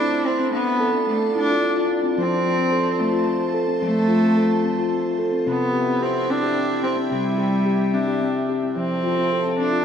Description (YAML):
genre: world meditative, meditative tuned percussion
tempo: 73 BPM (dotted quarters)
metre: 6/8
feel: straight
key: unclear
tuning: A4 = 440 Hz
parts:
  - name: rich cello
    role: melody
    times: 0.0-9.8 s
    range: G3 to D4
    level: -22 LUFS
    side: right 1 dB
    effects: tape echo
  - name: evolving wavetable pad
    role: sustained chords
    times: 0.0-9.8 s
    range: E4 to A5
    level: -28 LUFS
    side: right 1 dB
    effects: chorus, built-in reverb
  - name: steel tongue drum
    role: arpeggios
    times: 0.0-9.8 s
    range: C3 to A4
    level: -22 LUFS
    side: left 2 dB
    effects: tape echo
room: wet spring reverb, RT60 2.5 s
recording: echo-heavy mix, cassette tape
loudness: -18 LUFS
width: side -8 dB against mid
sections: 0.0-2.2 A section; 2.2-9.8 B section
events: none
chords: 0.0 Am; 0.5 Dm; 2.2 F; 5.5 C; 8.8 F